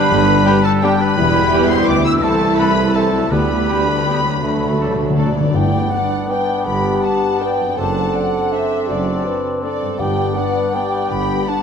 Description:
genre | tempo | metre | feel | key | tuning
classical, orchestral ballroom waltz | 164 BPM | 3/4 | uneven beats, rubato | G major | A4 = 439 Hz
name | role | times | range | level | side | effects
muted symphonic violin section | melody | 0.0-11.6 s | A4 to E6 | -24 LUFS | left 2 dB | none
mellow clarinet | second line | 0.0-11.6 s | D4 to G4 | -27 LUFS | left 1 dB | none
mellow hollow concert flute | second line | 0.0-11.6 s | D5 to E6 | -24 LUFS | left 1 dB | none
warm oboe | second line | 0.0-11.6 s | G4 to E5 | -26 LUFS | right 1 dB | none
mellow bassoon | accompaniment | 0.0-11.6 s | G3 to C4 | -23 LUFS | right 2 dB | none
concert harp | arpeggios | 0.0-11.6 s | E2 to D5 | -23 LUFS | left 8 dB | none
mellow tuba | bass | 0.1-11.4 s | E1 to D2 | -26 LUFS | right 4 dB | none
muted symphonic cello section | bass | 0.1-11.4 s | C2 to G2 | -25 LUFS | right 4 dB | none
muted symphonic double bass section | bass | 0.1-11.4 s | E1 to D2 | -26 LUFS | right 4 dB | none
muted symphonic violin section | second line | 0.5-11.6 s | D4 to B5 | -27 LUFS | left 2 dB | none
muted symphonic viola section | accompaniment | 0.5-11.6 s | E3 to D4 | -27 LUFS | right 2 dB | none
clear trombone section | sustained chords | 0.5-5.3 s | B2 to G3 | -30 LUFS | right 3 dB | none
mellow French horn section | sustained chords | 0.5-11.6 s | G3 to B4 | -24 LUFS | left 2 dB | none
warm trumpet | stabs | 0.5-5.3 s | G4 to A4 | -29 LUFS | right 2 dB | none
timpani | percussion | 3.3-6.1, 10.0-10.5 s | G2 to D3 | -23 LUFS | equal | none
room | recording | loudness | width
wet scoring stage reverb, RT60 1.9 s | none | -14 LUFS | side -6 dB against mid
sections
0.0-5.5 A section; 5.5-11.6 B section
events
timpani fill 4.4-5.5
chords
0.0 G; 1.2 Em; 2.2 Am/C; 3.3 G/D; 4.4 D; 5.5 G; 7.8 D7/F#; 10.0 G

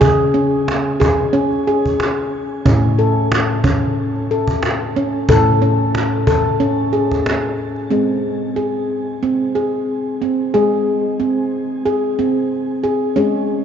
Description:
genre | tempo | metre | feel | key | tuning
world meditative, meditative tuned percussion | 91 BPM | 4/4 | swing 55% on 16ths | unclear | A4 = 440 Hz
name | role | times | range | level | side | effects
handpan | arpeggios | 0.0-13.6 s | A2 to A4 | -15 LUFS | equal | shimmer reverb
cajon | percussion | 0.0-7.8 s | none | -20 LUFS | right 1 dB | none
room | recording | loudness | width
wet cathedral reverb, RT60 4.2 s | dark, warm production, nothing above 7.5 kHz | -15 LUFS | side -8 dB against mid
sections
0.0-7.9 A section; 7.9-13.6 B section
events
none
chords
0.0 C#5; 2.7 A; 7.9 G#

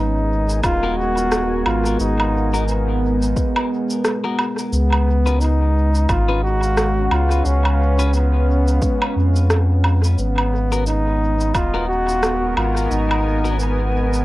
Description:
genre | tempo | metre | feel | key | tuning
ambient dub | 88 BPM | 4/4 | swing 58% on 16ths | G# dorian | A4 = 440 Hz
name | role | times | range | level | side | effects
warm trombone | melody | 0.0-14.2 s | B3 to F#4 | -22 LUFS | equal | cassette tape, dub echo
deep dark ambient pad | sustained chords | 0.0-14.2 s | G#3 to G#5 | -24 LUFS | right 1 dB | chorus, built-in reverb, cassette tape
warm sub bass | bass | 0.0-14.2 s | D#1 to E#2 | -18 LUFS | equal | none
electronic shaker, woodblock and rim click | drums | 0.5-14.2 s | none | -25 LUFS | right 1 dB | dub echo
electronic kick drum | drums | 0.6-11.7 s | none | -22 LUFS | equal | overdrive
clean electric guitar | stabs | 0.8-13.6 s | B3 to B4 | -28 LUFS | left 5 dB | cassette tape, dub echo
room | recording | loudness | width
light reverb | home recording on cassette | -16 LUFS | side -17 dB against mid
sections
0.0-14.2 A section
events
none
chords
0.0 G#madd9; 4.7 C#7; 10.2 G#madd9

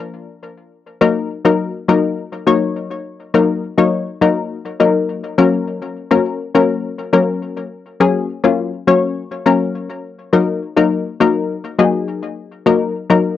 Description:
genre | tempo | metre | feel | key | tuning
pop | 103 BPM | 4/4 | straight | Eb minor | A4 = 435 Hz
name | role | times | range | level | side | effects
punchy chord stab | solo | 0.0-13.4 s | F3 to Db5 | -14 LUFS | left 4 dB | chorus, cassette tape, tape echo
room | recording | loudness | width
moderate booth ambience, RT60 0.2 s | home recording on cassette | -14 LUFS | side -11 dB against mid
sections
0.0-1.0 A section; 1.0-13.4 B section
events
none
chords
0.0 Bb; 1.0 Ebm; 5.4 Gb; 10.3 Ebm

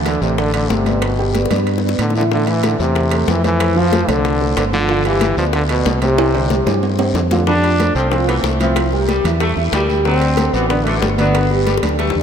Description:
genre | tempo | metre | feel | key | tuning
latin, salsa | 186 BPM | 4/4 | straight | unclear | A4 = 444 Hz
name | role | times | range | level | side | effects
dark concert grand piano | accompaniment | 0.0-12.2 s | D3 to G5 | -20 LUFS | right 1 dB | ensemble chorus
modern bright fingered electric bass | bass | 0.0-12.2 s | G1 to A2 | -19 LUFS | equal | none
bright trombone | melody | 0.1-11.6 s | B2 to D4 | -19 LUFS | equal | analog delay
bongos | percussion | 0.1-12.2 s | none | -26 LUFS | left 8 dB | none
congas | percussion | 0.1-12.2 s | none | -26 LUFS | left 2 dB | none
guiro | percussion | 0.1-12.2 s | none | -33 LUFS | left 8 dB | none
timbales | percussion | 0.1-12.2 s | none | -27 LUFS | right 6 dB | none
bright saxophone section | second line | 7.5-12.2 s | D3 to A3 | -24 LUFS | left 1 dB | analog delay
room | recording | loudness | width
moderate lush hall reverb, RT60 2.4 s | dreamy mix soaked in reverb | -14 LUFS | side -8 dB against mid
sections
0.0-7.5 A section; 7.5-12.2 B section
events
drum fill 1.3-2.3, 6.2-7.5, 11.7-12.2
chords
0.0 G; 2.3 Am; 3.6 F; 4.9 G7; 6.2 Csus2; 7.5 F; 8.8 C7; 10.1 D7; 11.3 G

